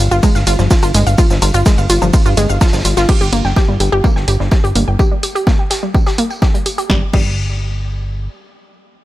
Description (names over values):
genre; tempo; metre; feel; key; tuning
melodic techno; 126 BPM; 4/4; straight; G phrygian; A4 = 439 Hz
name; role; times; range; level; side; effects
wide unison pluck; arpeggios; 0.0-7.3 s; F3 to G5; -18 LUFS; equal; sidechain pumping, tape echo
plucky analog bass; bass; 0.0-8.3 s; G1 to G2; -16 LUFS; equal; sidechain pumping
punchy analog drum machine; drums; 0.1-7.3 s; crash cymbal, hi-hat, ride cymbal, shaker, snare drum, woodblock; -21 LUFS; equal; none
electronic kick drum; drums; 0.2-7.3 s; none; -13 LUFS; equal; none
loose indie drum kit; drums; 0.2-6.9 s; hi-hat, snare drum, tambourine; -28 LUFS; equal; high-pass filter on hats, high-pass filter on snare, high-pass filter on perc, high-pass filter on room
room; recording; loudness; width
small room reverb; none; -11 LUFS; side -15 dB against mid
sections
0.0-3.1 A section; 3.1-6.9 B section; 6.9-9.0 C section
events
drop 0.0-3.1; filter sweep on synth arpeggio sound 3.1-6.9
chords
none